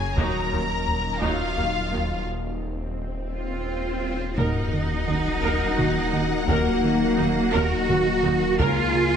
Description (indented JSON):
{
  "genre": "cinematic, hybrid orchestral and electronic film score",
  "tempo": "57 BPM (dotted quarters)",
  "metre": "6/8",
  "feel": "straight",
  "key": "Eb minor",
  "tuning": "A4 = 440 Hz",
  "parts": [
    { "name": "clear symphonic violin section", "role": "melody", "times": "0.0-9.2 s", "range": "F5 to Bb5", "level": "-32 LUFS", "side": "left 4 dB", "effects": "none" },
    { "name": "clear symphonic violin section", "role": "second line", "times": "0.0-9.2 s", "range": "F4 to Gb5", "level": "-34 LUFS", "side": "left 2 dB", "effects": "none" },
    { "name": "evolving wavetable pad", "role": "sustained chords", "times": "0.0-9.2 s", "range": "F3 to Eb5", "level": "-30 LUFS", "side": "left 3 dB", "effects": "chorus, built-in reverb" },
    { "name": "rubbery square bass", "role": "riff", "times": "0.0-9.2 s", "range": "Db2 to Eb3", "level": "-29 LUFS", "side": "right 2 dB", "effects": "none" },
    { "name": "phased detuned saw bass", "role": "bass", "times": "0.0-9.2 s", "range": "Eb1 to Db2", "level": "-32 LUFS", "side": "equal", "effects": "phaser" },
    { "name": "clear symphonic viola section", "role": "accompaniment", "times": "0.2-8.9 s", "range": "Eb3 to Bb4", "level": "-30 LUFS", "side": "right 1 dB", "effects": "none" },
    { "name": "clear symphonic cello section", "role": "bass", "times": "0.2-9.2 s", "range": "Eb2 to Gb4", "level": "-26 LUFS", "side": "right 3 dB", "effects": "none" },
    { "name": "rich symphonic double bass section", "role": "bass", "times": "0.2-8.7 s", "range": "Db2 to Eb2", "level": "-32 LUFS", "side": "right 3 dB", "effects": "none" },
    { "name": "taiko ensemble", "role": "drums", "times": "0.2-9.2 s", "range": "none", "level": "-30 LUFS", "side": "equal", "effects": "none" },
    { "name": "swell and sub drop", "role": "sound effects", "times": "2.7-6.5 s", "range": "none", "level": "-31 LUFS", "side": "equal", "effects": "none" },
    { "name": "mellow French horn section", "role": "sustained chords", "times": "4.4-9.2 s", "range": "Bb3 to Ab4", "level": "-30 LUFS", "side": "left 4 dB", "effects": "none" }
  ],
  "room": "wet scoring stage reverb, RT60 1.9 s",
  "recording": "nothing above 10.6 kHz",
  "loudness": "-21 LUFS",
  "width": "side -8 dB against mid",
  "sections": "0.0-4.4 A section; 4.4-9.2 B section",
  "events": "break 2.3-4.4; swell 2.7-4.4; drum fill 3.3-4.4; impact 4.4-6.5",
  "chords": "0.2 Ebm; 8.6 Bbm7/Db"
}